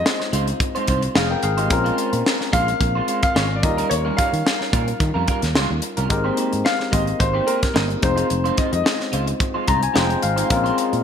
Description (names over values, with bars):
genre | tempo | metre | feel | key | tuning
polished 1980s jazz-funk pop | 109 BPM | 4/4 | swing 54% on 16ths | unclear | A4 = 441 Hz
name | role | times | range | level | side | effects
warm grand piano | melody | 0.0-9.8 s | Bb4 to F5 | -24 LUFS | left 1 dB | wide subtle chorus, ping-pong delay
barky tine electric piano | accompaniment | 0.0-11.0 s | Gb3 to Bb5 | -24 LUFS | left 4 dB | overdrive, lush chorus
electric guitar at the edge of break-up | riff | 0.0-11.0 s | G3 to Eb5 | -26 LUFS | right 4 dB | analog chorus
tight funk drum kit | drums | 0.1-11.0 s | hi-hat, kick drum, snare drum | -22 LUFS | equal | none
sustaining fretless electric bass | bass | 0.3-11.0 s | F1 to Eb3 | -23 LUFS | equal | none
room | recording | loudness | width
moderate plate reverb, RT60 1.5 s, studio ambience | bright 1980s-style digital production | -17 LUFS | side -8 dB against mid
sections
0.0-11.0 A section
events
tine electric piano fill 9.4-10.5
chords
0.0 Fm7; 1.7 Bbm9; 3.6 Eb9; 6.1 Abmaj9; 8.0 Fm7; 10.5 Bbm9